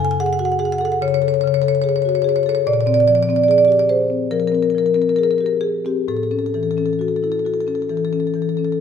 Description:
classical, contemporary piece for solo marimba; 64-74 BPM; 4/4; rubato; A4 = 438 Hz
marimba with medium mallets; solo; 0.0-8.8 s; F#2 to G#5; -16 LUFS; left 2 dB
wet recital hall reverb, RT60 1.6 s; -16 LUFS; side -7 dB against mid
0.0-8.8 A section
0.0 F#madd9; 2.6 Bb9; 6.1 A6

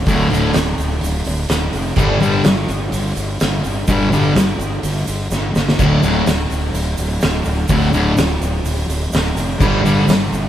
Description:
garage rock duo or trio; 126 BPM; 4/4; straight; D minor; A4 = 440 Hz
fuzz fingered electric bass; bass; 0.0-10.5 s; D1 to G1; -20 LUFS; equal; overdrive
thick fuzz guitar; riff; 0.1-10.0 s; D2 to G3; -15 LUFS; left 1 dB; distortion
oversized low-tuned drum kit; drums; 0.1-10.4 s; crash cymbal, hi-hat, kick drum, snare drum; -19 LUFS; equal
egg shaker; percussion; 0.1-10.4 s; -34 LUFS; right 7 dB
moderate studio reverb, RT60 0.6 s; band playing live in one room; -14 LUFS; side -11 dB against mid
0.0-10.5 A section
drum fill 5.3-5.8
0.0 D5; 2.0 G5; 5.8 D5; 9.6 G5

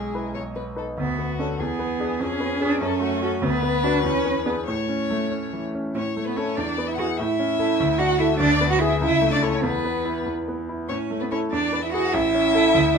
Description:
quick classical-period movement for piano trio; 97 BPM (dotted quarters); 6/8; straight; A major; A4 = 440 Hz
warm violin; melody; 0.0-13.0 s; F#4 to F#5; -26 LUFS; left 8 dB
rich cello; second line; 0.0-13.0 s; G#3 to F#4; -24 LUFS; right 7 dB
bright concert grand piano; accompaniment; 0.0-13.0 s; A1 to B4; -25 LUFS; left 2 dB
light reverb; minimal, uncompressed stereo recording; -21 LUFS; side -6 dB against mid
0.0-5.9 A section; 5.9-13.0 B section
0.4 B; 1.0 Bm7/D; 1.6 E7; 2.2 C#7/E#; 2.8 F#m; 3.4 Bm/D; 4.0 E7; 4.7 A; 6.6 E7; 7.2 A; 7.8 D; 8.4 E7/D; 9.0 A/C#; 9.6 E5; 10.9 A; 11.5 E7; 12.1 A

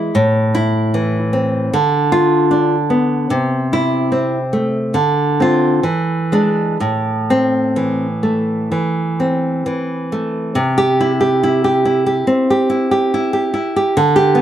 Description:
romantic piece for solo classical guitar; 62-78 BPM; 4/4; rubato; A minor, C major from 10.5 s; A4 = 440 Hz
nylon-string guitar; solo; 0.0-14.4 s; A2 to G4; -14 LUFS; equal
light reverb; dark, warm production; -14 LUFS; side -10 dB against mid
0.0-10.5 A section; 10.5-14.4 B section
0.2 Am; 1.7 Bdim/D; 3.3 Am/C; 5.0 Dm7; 5.9 E7; 6.8 Am; 10.5 C

